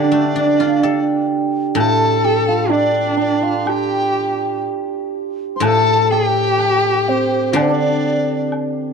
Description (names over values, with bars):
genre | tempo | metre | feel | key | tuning
chinese traditional, Chinese chamber ensemble | 63 BPM | 2/4 | rubato | G shang mode | A4 = 440 Hz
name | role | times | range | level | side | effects
mellow hollow large dizi | melody | 0.0-8.5 s | C5 to C6 | -21 LUFS | left 2 dB | none
bright horsehead fiddle | second line | 0.0-8.5 s | D4 to A4 | -20 LUFS | left 3 dB | none
hammered dulcimer | second line | 0.0-8.9 s | C4 to C5 | -19 LUFS | right 6 dB | none
guzheng | accompaniment | 0.0-8.9 s | A2 to A4 | -21 LUFS | left 2 dB | none
woodblock | percussion | 0.8-8.7 s | none | -28 LUFS | left 1 dB | none
room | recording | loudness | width
moderate plate reverb, RT60 3.7 s | dark, warm production | -14 LUFS | side -6 dB against mid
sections
0.0-5.6 A section; 5.6-8.9 B section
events
none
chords
none